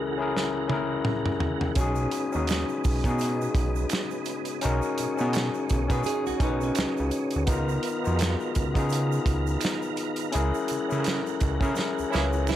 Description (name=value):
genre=R&B, neo-soul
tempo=84 BPM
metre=4/4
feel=swing 58% on 16ths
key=B major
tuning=A4 = 440 Hz
part: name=overdriven tine electric piano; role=accompaniment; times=0.0-12.6 s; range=B3 to C#5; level=-28 LUFS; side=left 4 dB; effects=none
part: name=tonewheel organ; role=sustained chords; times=0.0-12.6 s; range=C#2 to A#4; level=-34 LUFS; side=right 5 dB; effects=slow rotary speaker, chorus vibrato
part: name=warm soul drum kit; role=drums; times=0.4-12.6 s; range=hi-hat, kick drum, snare drum, toms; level=-29 LUFS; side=right 1 dB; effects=none
part: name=fat analog bass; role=bass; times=1.8-12.6 s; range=B1 to C#3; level=-27 LUFS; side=right 1 dB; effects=none
part: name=tube shaker and finger snaps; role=percussion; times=1.8-12.6 s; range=none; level=-42 LUFS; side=right 13 dB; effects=none
part: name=nylon-string guitar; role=second line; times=5.9-7.4, 12.5-12.6 s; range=C#4 to B4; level=-31 LUFS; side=right 11 dB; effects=none
part: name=warm horn section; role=stabs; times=12.1-12.3 s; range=C#3 to E4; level=-32 LUFS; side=right 8 dB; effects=none
room=small room ambience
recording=none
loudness=-24 LUFS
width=side -12 dB against mid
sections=0.0-12.6 A section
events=drum fill 0.3-1.8, 11.8-12.6; band accent 10.3-12.6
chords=0.0 F#9/C#; 1.8 B69; 7.5 C#13; 10.3 F#9/C#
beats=0.33 1.05 | 1.76 2.48 3.19 3.90 | 4.62 5.33 6.05 6.76 | 7.47 8.19 8.90 9.62 | 10.33 11.05 11.76 12.47